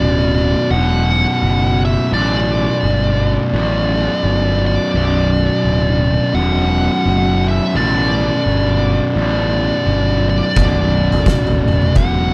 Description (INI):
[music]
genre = stoner and doom metal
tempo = 85 BPM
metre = 4/4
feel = swing 60% on 8ths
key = B minor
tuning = A4 = 440 Hz
[part]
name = fuzz lead guitar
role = melody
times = 0.0-12.3 s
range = D5 to F#5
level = -22 LUFS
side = equal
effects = wah, distortion, slapback echo
[part]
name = fuzz guitar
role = riff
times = 0.0-12.3 s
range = B1 to B2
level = -20 LUFS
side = equal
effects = distortion
[part]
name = fuzz picked electric bass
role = bass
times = 0.0-12.3 s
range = B0 to A1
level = -20 LUFS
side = equal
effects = overdrive
[part]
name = oversized low-tuned drum kit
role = drums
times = 10.6-12.2 s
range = kick drum, snare drum, toms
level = -19 LUFS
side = equal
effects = none
[sound]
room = little or no reverb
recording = none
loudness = -16 LUFS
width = mono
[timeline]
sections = 0.0-12.3 A section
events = none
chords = 0.0 Bm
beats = 0.01 0.71 1.42 | 2.12 2.83 3.53 4.24 | 4.94 5.64 6.35 7.05 | 7.75 8.45 9.16 9.86 | 10.56 11.26 11.96